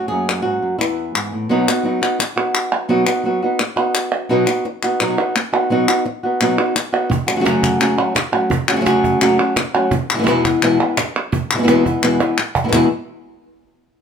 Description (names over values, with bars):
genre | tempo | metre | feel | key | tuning
flamenco | 171 BPM | 4/4 | straight | unclear | A4 = 440 Hz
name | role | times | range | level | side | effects
flamenco guitar | melody | 0.0-12.9 s | E2 to G#4 | -16 LUFS | equal | none
palmas hand claps | percussion | 0.3-12.8 s | none | -20 LUFS | equal | none
cajon | percussion | 7.1-12.8 s | none | -22 LUFS | right 3 dB | none
room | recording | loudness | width
wet studio reverb, RT60 0.6 s | none | -15 LUFS | side -7 dB against mid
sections
0.0-1.5 A section; 1.5-12.7 B section; 12.7-14.0 C section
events
drum fill 12.2-12.7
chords
0.1 F#; 0.8 E5; 1.5 B; 7.1 F#m; 9.9 E; 12.7 E5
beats
| 0.10 0.45 0.80 1.15 | 1.50 1.85 2.19 2.54 | 2.89 3.24 3.59 3.94 | 4.29 4.64 4.99 5.34 | 5.70 6.05 6.40 6.75 | 7.10 7.46 7.81 8.16 | 8.51 8.86 9.21 9.57 | 9.92 10.27 10.62 10.97 | 11.32 11.67 12.02 12.37 | 12.72